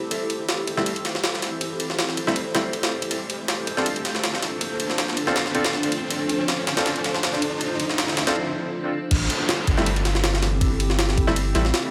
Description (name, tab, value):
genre	drum and bass, jungle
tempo	160 BPM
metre	4/4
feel	swing 53% on 16ths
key	A minor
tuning	A4 = 439 Hz
part	granular cloud pad	sustained chords	0.0-11.9 s	C4 to C5	-30 LUFS	equal	built-in reverb
part	riser and downlifter	sound effects	0.0-11.9 s	none	-34 LUFS	equal	none
part	jungle sampler-style drum kit	drums	0.1-11.8 s	crash cymbal, kick drum, ride cymbal, snare drum	-27 LUFS	equal	high-pass filter on snare, small room ambience, high-pass filter on cymbals, high-pass filter on kick
part	bright concert grand piano	stabs	0.8-11.6 s	G3 to A4	-30 LUFS	equal	dub echo
part	soft dub sub bass	bass	9.1-11.7 s	G1 to A1	-26 LUFS	equal	none
room	moderate lush hall reverb, RT60 2.1 s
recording	none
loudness	-23 LUFS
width	mono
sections	0.0-9.1 A section; 9.1-11.9 B section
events	build-up 0.0-9.1; riser 0.0-8.4; break 8.4-9.1; drop 9.1-11.9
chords	0.0 Am7; 3.1 Dm7; 9.1 Am7